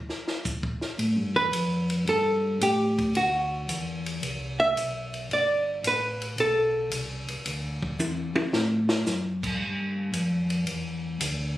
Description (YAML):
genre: soul jazz organ trio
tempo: 112 BPM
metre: 4/4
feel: swing 68% on 8ths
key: G mixolydian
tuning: A4 = 441 Hz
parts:
  - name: compact cocktail drum kit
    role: drums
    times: 0.1-11.4 s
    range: crash cymbal, hi-hat, kick drum, ride cymbal, snare drum, toms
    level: -31 LUFS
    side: left 1 dB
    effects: none
  - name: mellow tonewheel organ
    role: bass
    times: 1.0-11.6 s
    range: G1 to A2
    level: -29 LUFS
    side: equal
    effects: slow rotary speaker
  - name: archtop guitar, miked and amplified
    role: accompaniment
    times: 1.4-6.9 s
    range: F#4 to E5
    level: -24 LUFS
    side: right 1 dB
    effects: none
room: light reverb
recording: recorded on a phone in the room, studio reverb, compression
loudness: -24 LUFS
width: side -15 dB against mid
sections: 0.0-9.6 A section; 9.6-11.6 B section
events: hollow-body jazz guitar solo 0.0-9.6; drum fill 8.0-9.1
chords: 0.0 N.C.; 1.0 A5; 3.2 D13; 5.3 Gadd9; 7.5 Dadd9; 9.6 G5